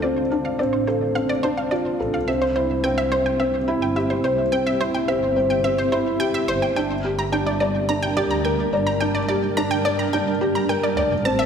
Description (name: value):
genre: piano and strings electronica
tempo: 107 BPM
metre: 4/4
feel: straight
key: unclear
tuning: A4 = 440 Hz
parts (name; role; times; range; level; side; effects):
- granular cloud pad; sustained chords; 0.0-11.5 s; G3 to F5; -26 LUFS; equal; built-in reverb
- analog pluck; arpeggios; 0.0-11.4 s; C5 to Bb5; -26 LUFS; right 1 dB; chorus, tape echo
- felt-muted upright piano; riff; 0.0-11.4 s; C4 to D5; -22 LUFS; equal; tape echo
- muted studio double bass section; bass; 0.6-11.5 s; F1 to G2; -29 LUFS; equal; none
room: wet echo chamber reverb, RT60 2.5 s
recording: none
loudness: -19 LUFS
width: side -7 dB against mid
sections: 0.0-11.5 A section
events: build-up 0.0-11.5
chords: 0.0 Dm7; 2.3 C; 6.8 Gm